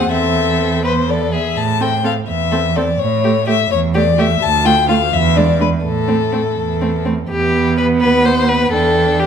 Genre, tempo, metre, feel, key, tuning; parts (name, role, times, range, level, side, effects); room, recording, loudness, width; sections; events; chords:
quick classical-period movement for string quartet; 84 BPM (dotted quarters); 6/8; straight; A minor; A4 = 440 Hz
rich violin; melody; 0.0-9.3 s; A4 to A5; -17 LUFS; left 8 dB
rich violin; second line; 0.0-9.3 s; C4 to C5; -20 LUFS; left 2 dB
warm viola; accompaniment; 0.0-9.3 s; G#3 to D4; -20 LUFS; right 4 dB
rich cello; bass; 0.0-9.3 s; D2 to A2; -18 LUFS; right 5 dB
wet recital hall reverb, RT60 1.4 s; -13 LUFS; side -7 dB against mid
0.0-7.3 A section; 7.3-9.3 B section
0.1 Am/E; 0.8 E; 1.6 Am; 3.0 A7; 4.4 Dm; 5.1 E7; 5.8 Am; 7.3 Em; 8.0 B/D#; 8.7 Em